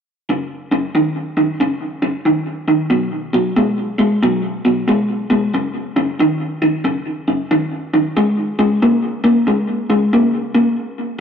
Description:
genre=blues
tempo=92 BPM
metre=4/4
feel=swing 65% on 8ths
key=F# major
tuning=A4 = 441 Hz
part: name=electric guitar through a small old amp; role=solo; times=0.3-10.8 s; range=F#2 to A#3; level=-15 LUFS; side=equal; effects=spring reverb, analog delay
room=moderate studio reverb, RT60 0.6 s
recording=rough rehearsal-room recording, warm saturation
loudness=-15 LUFS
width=side -7 dB against mid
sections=0.3-10.8 A section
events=none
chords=0.3 F#5; 2.9 B5; 5.5 F#5; 8.2 C#5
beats=| 0.30 0.95 1.61 2.26 | 2.92 3.57 4.23 4.88 | 5.54 6.19 6.85 7.50 | 8.16 8.81 9.47 10.12

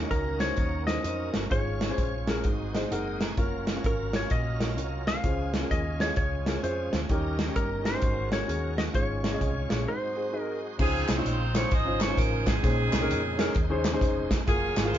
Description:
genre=uptempo gospel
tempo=129 BPM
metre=4/4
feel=swing 64% on 8ths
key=Db major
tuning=A4 = 440 Hz
part: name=warm grand piano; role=accompaniment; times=0.0-15.0 s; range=Ab2 to Bb5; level=-32 LUFS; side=left 2 dB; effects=none
part: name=bright tonewheel organ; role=sustained chords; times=0.0-15.0 s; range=Db3 to Ab5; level=-38 LUFS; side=right 3 dB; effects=slow rotary speaker, overdrive, chorus vibrato
part: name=mellow French horn section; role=sustained chords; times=0.0-10.8 s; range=F3 to Gb4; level=-43 LUFS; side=right 1 dB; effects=none
part: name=hollow-body short-scale fingered electric bass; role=bass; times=0.0-15.0 s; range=F1 to F2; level=-32 LUFS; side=equal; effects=none
part: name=clean lap steel guitar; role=melody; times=0.1-10.6 s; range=Bb4 to F5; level=-32 LUFS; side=left 1 dB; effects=none
part: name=modern studio drum kit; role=drums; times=0.1-15.0 s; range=crash cymbal, hi-hat, kick drum, snare drum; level=-29 LUFS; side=equal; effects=none
part: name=bright saxophone section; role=melody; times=10.8-15.0 s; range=C4 to Eb5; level=-30 LUFS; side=right 2 dB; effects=none
part: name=group handclap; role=percussion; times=11.1-14.8 s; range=none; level=-39 LUFS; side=left 3 dB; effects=none
room=moderate studio reverb, RT60 0.5 s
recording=band playing live in one room, nothing above 7.5 kHz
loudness=-25 LUFS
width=side -11 dB against mid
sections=0.0-10.8 A section; 10.8-15.0 B section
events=grand piano fill 2.4-3.4; tonewheel organ fill 2.7-3.4; break 9.9-10.8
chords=0.0 Ebm7; 1.5 Db/Ab; 2.4 Ab7; 3.4 Gbmaj7; 5.2 Dbmaj7; 7.1 Eb7; 8.0 Ab9sus4; 8.9 Db/Ab; 9.9 Ab7; 10.8 Dbmaj9; 12.6 Bbm11; 14.5 Gbmaj9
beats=0.11 0.57 1.04 | 1.51 1.98 2.44 2.91 | 3.37 3.84 4.31 4.77 | 5.24 5.70 6.17 6.63 | 7.10 7.56 8.02 8.49 | 8.95 9.41 9.87 10.34 | 10.79 11.26 11.72 12.18 | 12.63 13.10 13.55 14.02 | 14.47 14.94

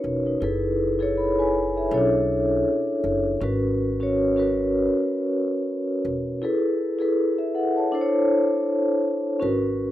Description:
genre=lo-fi hip hop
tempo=80 BPM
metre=4/4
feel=swing 56% on 16ths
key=G# phrygian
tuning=A4 = 440 Hz
part: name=vibraphone with soft mallets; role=accompaniment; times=0.0-9.9 s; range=C#4 to B5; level=-21 LUFS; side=equal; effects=cassette tape, low-pass filter
part: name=upright bass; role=bass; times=0.0-9.9 s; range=E1 to B1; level=-30 LUFS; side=equal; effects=none
room=little or no reverb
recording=rough home demo mix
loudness=-21 LUFS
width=side -13 dB against mid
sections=0.0-9.9 A section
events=none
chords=0.4 F#m11; 1.9 Bm11; 3.4 G#m11; 6.4 Eadd11; 7.9 Aadd11/D; 9.4 G#m11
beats=| 0.41 1.16 1.91 2.66 | 3.41 4.16 4.91 5.66 | 6.41 7.16 7.91 8.66 | 9.41

